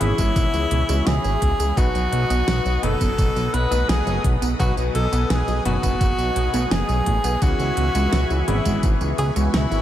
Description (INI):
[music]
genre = synthwave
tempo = 85 BPM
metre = 4/4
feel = straight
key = unclear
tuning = A4 = 440 Hz
[part]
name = breathy tenor saxophone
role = melody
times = 0.0-9.8 s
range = E4 to B4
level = -24 LUFS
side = equal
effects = digital delay, shimmer reverb
[part]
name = warm analog pad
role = sustained chords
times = 0.0-9.8 s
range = G#4 to D#6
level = -31 LUFS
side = left 2 dB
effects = chorus, sidechain pumping, shimmer reverb
[part]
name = analog pluck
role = arpeggios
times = 0.0-9.8 s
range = B2 to B3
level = -28 LUFS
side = right 4 dB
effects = chorus, cassette tape, ping-pong delay, shimmer reverb
[part]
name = clear electric grand piano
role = stabs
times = 0.0-9.8 s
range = B2 to B4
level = -29 LUFS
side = left 6 dB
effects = shimmer reverb
[part]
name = fat analog bass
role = bass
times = 0.0-9.8 s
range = F#1 to C#2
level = -22 LUFS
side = equal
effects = none
[part]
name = pop drum kit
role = drums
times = 0.0-9.8 s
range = hi-hat, snare drum, tambourine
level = -28 LUFS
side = right 1 dB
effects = studio reverb
[part]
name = electronic kick drum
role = drums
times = 0.2-9.0 s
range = none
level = -22 LUFS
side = equal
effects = studio reverb
[sound]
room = light reverb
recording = none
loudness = -18 LUFS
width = side -12 dB against mid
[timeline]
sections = 0.0-9.8 A section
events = none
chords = 0.0 C#m7; 1.8 B; 7.4 C#m7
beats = 0.36 1.06 | 1.77 2.48 3.18 3.89 | 4.59 5.30 6.01 6.71 | 7.42 8.12 8.83 9.54